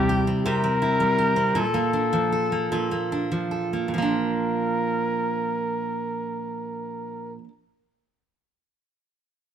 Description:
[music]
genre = pop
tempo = 48-56 BPM (dotted quarters)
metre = 6/8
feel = straight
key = Bb major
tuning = A4 = 438 Hz
[part]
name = warm flugelhorn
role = melody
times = 0.0-7.3 s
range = G4 to Bb4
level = -25 LUFS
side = left 2 dB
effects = none
[part]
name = fingerpicked steel-string acoustic guitar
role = accompaniment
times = 0.0-7.5 s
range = Bb2 to A4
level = -25 LUFS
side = right 2 dB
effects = none
[sound]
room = moderate stone room reverb, RT60 1.1 s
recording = band playing live in one room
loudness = -22 LUFS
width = side -8 dB against mid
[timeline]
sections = 0.0-3.9 A section; 3.9-8.9 B section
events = slowing down 0.0-3.9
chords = 0.0 C; 1.6 Bbmaj7

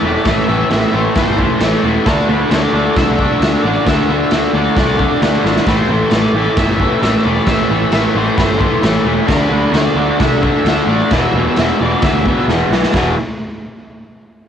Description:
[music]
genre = garage rock duo or trio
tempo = 132 BPM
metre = 4/4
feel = straight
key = unclear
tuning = A4 = 437 Hz
[part]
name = raw garage guitar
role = riff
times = 0.0-13.1 s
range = E2 to D4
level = -14 LUFS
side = equal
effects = overdrive, cassette tape
[part]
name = fuzz picked electric bass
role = bass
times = 0.0-13.1 s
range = E1 to D2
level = -19 LUFS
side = equal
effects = overdrive
[part]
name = octave-fuzz lead guitar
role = melody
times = 0.1-12.4 s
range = B4 to E5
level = -23 LUFS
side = equal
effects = distortion, cassette tape, plate reverb
[part]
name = raw garage drum kit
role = drums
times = 0.3-13.1 s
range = china cymbal, crash cymbal, kick drum, snare drum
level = -17 LUFS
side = equal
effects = cassette tape
[sound]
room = light reverb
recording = home recording on cassette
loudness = -11 LUFS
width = side -8 dB against mid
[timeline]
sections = 0.0-12.9 A section; 12.9-14.5 B section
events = drum fill 5.4, 12.5-12.9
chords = 0.0 Am; 2.1 D5; 5.7 Am; 9.3 D5; 11.1 E5

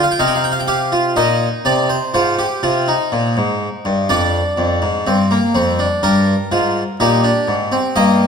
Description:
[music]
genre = classical, baroque-style 3-part fugue for harpsichord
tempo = 62 BPM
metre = 4/4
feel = straight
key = F minor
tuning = A4 = 440 Hz
[part]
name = harpsichord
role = solo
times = 0.0-8.3 s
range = F2 to G5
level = -14 LUFS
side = equal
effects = none
[sound]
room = wet recital hall reverb, RT60 1.7 s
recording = none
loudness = -14 LUFS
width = side -6 dB against mid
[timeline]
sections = 0.0-2.1 A section; 2.1-8.3 B section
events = none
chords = 0.2 Cm; 2.1 Fm/Ab; 4.1 Ddim/F; 6.0 Gm

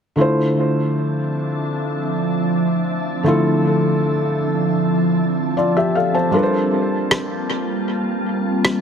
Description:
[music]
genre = contemporary R&B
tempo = 78 BPM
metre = 4/4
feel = straight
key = D minor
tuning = A4 = 439 Hz
[part]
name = felt-muted upright piano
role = accompaniment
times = 0.2-8.8 s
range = D3 to A5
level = -19 LUFS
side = left 1 dB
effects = tape echo
[part]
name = glassy FM pad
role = sustained chords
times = 1.0-8.8 s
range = F3 to A5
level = -20 LUFS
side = right 1 dB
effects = ensemble chorus, built-in reverb
[part]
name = rim click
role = drums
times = 7.1-8.8 s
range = none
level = -21 LUFS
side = equal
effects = tape echo
[sound]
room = light reverb, small room ambience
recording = echo-heavy mix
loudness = -17 LUFS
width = side -7 dB against mid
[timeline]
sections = 0.2-8.8 A section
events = none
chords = 0.2 Dm9; 6.3 Gm11

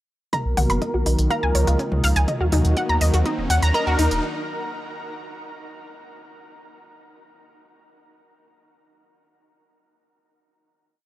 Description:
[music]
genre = melodic techno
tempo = 123 BPM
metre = 4/4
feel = straight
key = Eb minor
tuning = A4 = 440 Hz
[part]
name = wide unison lead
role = melody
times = 0.3-4.2 s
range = Bb4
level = -30 LUFS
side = right 1 dB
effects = sidechain pumping, tape echo
[part]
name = glassy wavetable pluck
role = second line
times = 0.3-4.2 s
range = Bb5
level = -32 LUFS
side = right 2 dB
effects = chorus, sidechain pumping, tape echo
[part]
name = warm analog pad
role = sustained chords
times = 0.3-4.2 s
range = Db3 to F#4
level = -29 LUFS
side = equal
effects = chorus, sidechain pumping
[part]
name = analog pluck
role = arpeggios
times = 0.3-4.0 s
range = Db4 to B5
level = -26 LUFS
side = left 1 dB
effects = chorus, sidechain pumping, tape echo
[part]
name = analog drone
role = drone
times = 0.3-4.3 s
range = D#3 to D#4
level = -36 LUFS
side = equal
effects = chorus, sidechain pumping
[part]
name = deep house drum kit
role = drums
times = 0.3-4.2 s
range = hi-hat, toms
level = -28 LUFS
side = equal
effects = studio reverb
[part]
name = electronic kick drum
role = drums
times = 0.3-3.8 s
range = none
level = -34 LUFS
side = equal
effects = high-pass filter on kick, studio reverb
[part]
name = riser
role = sound effects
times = 2.4-4.2 s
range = none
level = -34 LUFS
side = left 1 dB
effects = none
[part]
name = round analog bass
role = bass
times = 0.5-4.2 s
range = Eb1 to Eb2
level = -20 LUFS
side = equal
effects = sidechain pumping
[sound]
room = digital ambience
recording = dry, gritty hardware recording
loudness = -18 LUFS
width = side -15 dB against mid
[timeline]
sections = 0.3-4.2 build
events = build-up 0.3-4.2; filter sweep on synth arpeggio sound 0.3-4.2; filter sweep on analog synth lead 0.3-4.2; filter sweep on synth pluck 0.3-4.2; filter sweep on analog synth pad 0.3-4.2; riser 2.4-4.2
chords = 0.3 B; 1.3 Db; 2.3 Ebm

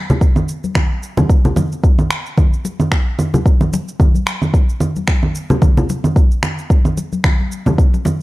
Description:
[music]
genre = downtempo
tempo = 111 BPM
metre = 4/4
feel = swing 56% on 16ths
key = none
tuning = none
[part]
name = electronic cabasa, congas and finger snaps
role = drums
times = 0.1-8.2 s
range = none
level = -19 LUFS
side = right 1 dB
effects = none
[part]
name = congas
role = percussion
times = 0.1-8.2 s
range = none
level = -19 LUFS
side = left 1 dB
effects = none
[part]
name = electronic kick drum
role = drums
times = 0.2-7.9 s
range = none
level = -12 LUFS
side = equal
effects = overdrive
[sound]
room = light reverb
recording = none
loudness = -13 LUFS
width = side -18 dB against mid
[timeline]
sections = 0.0-8.2 A section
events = none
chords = none

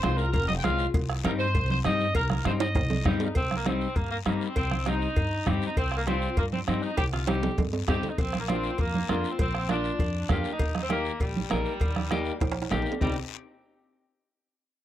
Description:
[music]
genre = latin, cumbia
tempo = 199 BPM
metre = 4/4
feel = straight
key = C minor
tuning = A4 = 440 Hz
[part]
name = bright saxophone section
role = melody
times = 0.0-13.2 s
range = G3 to G5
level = -31 LUFS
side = equal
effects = none
[part]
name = clean electric guitar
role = accompaniment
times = 0.0-13.2 s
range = G3 to Bb4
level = -32 LUFS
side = left 4 dB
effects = spring reverb
[part]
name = upright bass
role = bass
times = 0.0-13.2 s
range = F1 to G2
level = -31 LUFS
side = equal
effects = none
[part]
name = bombo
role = percussion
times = 0.0-13.1 s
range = none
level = -30 LUFS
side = equal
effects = none
[part]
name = congas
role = percussion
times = 0.0-13.1 s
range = none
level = -33 LUFS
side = right 5 dB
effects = none
[part]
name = guiro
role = percussion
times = 0.0-13.1 s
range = none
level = -43 LUFS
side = left 15 dB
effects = none
[part]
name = cowbell and timbales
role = percussion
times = 0.3-13.1 s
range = none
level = -34 LUFS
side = right 4 dB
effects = none
[sound]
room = little or no reverb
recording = dry, close 1970s-style studio recording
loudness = -25 LUFS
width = side -12 dB against mid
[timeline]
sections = 0.0-3.4 A section; 3.4-13.0 B section; 13.0-14.2 C section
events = drum fill 2.6-3.4, 7.0-8.2, 12.4-13.0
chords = 0.0 Fm; 0.9 Cm; 8.2 Bb; 10.6 Eb; 13.0 Cm

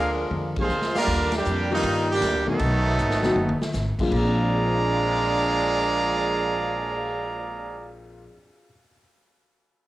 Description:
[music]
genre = jazz, big band swing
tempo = 158 BPM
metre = 4/4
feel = swing 66% on 8ths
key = Bb mixolydian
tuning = A4 = 440 Hz
[part]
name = bright saxophone section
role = melody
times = 0.0-0.7 s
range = Ab3 to Bb4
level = -29 LUFS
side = left 2 dB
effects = cassette tape
[part]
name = brilliant trombone section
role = second line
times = 0.0-7.9 s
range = G2 to D4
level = -29 LUFS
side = right 3 dB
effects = cassette tape
[part]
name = bright trumpet section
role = stabs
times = 0.0-1.0 s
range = G4 to F5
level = -29 LUFS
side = right 1 dB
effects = cassette tape
[part]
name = upright bass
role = bass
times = 0.0-8.3 s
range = F#1 to G2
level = -28 LUFS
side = equal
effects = none
[part]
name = swinging big-band drum kit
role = drums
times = 0.3-7.1 s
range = crash cymbal, cymbal swell, hi-hat, kick drum, ride cymbal, snare drum, toms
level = -32 LUFS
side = left 1 dB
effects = cassette tape
[part]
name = brilliant trumpet section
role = melody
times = 0.6-7.9 s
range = Gb3 to Bb5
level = -24 LUFS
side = right 1 dB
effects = cassette tape
[part]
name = dark upright piano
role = accompaniment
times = 0.6-9.0 s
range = Bb2 to Ab6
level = -29 LUFS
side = left 2 dB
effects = cassette tape
[sound]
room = little or no reverb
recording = home recording on cassette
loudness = -21 LUFS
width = side -16 dB against mid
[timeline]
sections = 0.0-1.1 A section; 1.1-4.1 B section; 4.1-7.2 C section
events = drum fill 0.3-1.1, 3.0-3.7; band accent 0.5, 1.3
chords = 0.0 Bb7; 1.1 Ebmaj9; 2.6 B7; 4.1 Bb7

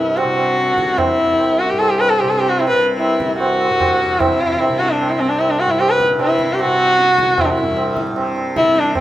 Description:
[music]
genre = indian classical, Hindustani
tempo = 150 BPM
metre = 4/4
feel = straight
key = C raga yaman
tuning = A4 = 440 Hz
[part]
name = warm sarangi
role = melody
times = 0.0-9.0 s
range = C4 to B4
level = -15 LUFS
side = equal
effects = none
[part]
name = tanpura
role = drone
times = 0.0-9.0 s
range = C2 to C3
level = -24 LUFS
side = equal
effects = none
[part]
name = tabla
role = percussion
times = 0.2-9.0 s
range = none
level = -21 LUFS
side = right 3 dB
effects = none
[sound]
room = moderate recital hall reverb, RT60 1.7 s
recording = none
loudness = -14 LUFS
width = side -14 dB against mid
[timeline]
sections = 0.0-9.0 A section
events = speeding up 0.0-9.0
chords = none

